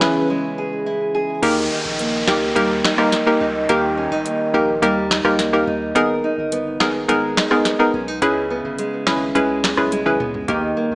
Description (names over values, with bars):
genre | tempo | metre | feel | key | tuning
dancehall | 106 BPM | 4/4 | straight | unclear | A4 = 440 Hz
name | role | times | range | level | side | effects
hollow square pluck | accompaniment | 0.0-10.9 s | A#3 to B4 | -18 LUFS | equal | chorus
warm analog pad | sustained chords | 0.0-1.4 s | E3 to B4 | -24 LUFS | equal | chorus, sidechain pumping
nylon-string guitar | arpeggios | 0.0-10.9 s | C#3 to A#4 | -21 LUFS | right 1 dB | tape echo
booming analog drum machine | drums | 0.0-10.7 s | crash cymbal, finger snaps, hi-hat, kick drum, rim click, snare drum, toms | -22 LUFS | equal | none
punchy sub bass | bass | 1.4-10.9 s | G1 to D#2 | -35 LUFS | equal | none
downlifter | sound effects | 1.4-6.0 s | none | -28 LUFS | equal | none
room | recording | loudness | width
light reverb, digital ambience | small speaker sound | -16 LUFS | side -25 dB against mid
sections
0.0-1.4 A section; 1.4-10.9 B section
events
break 0.3-1.4; kick muted 1.4-10.5; drum fill 9.9-10.5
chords
0.0 C#m7; 1.4 D#; 6.0 G#madd9; 8.2 C#m7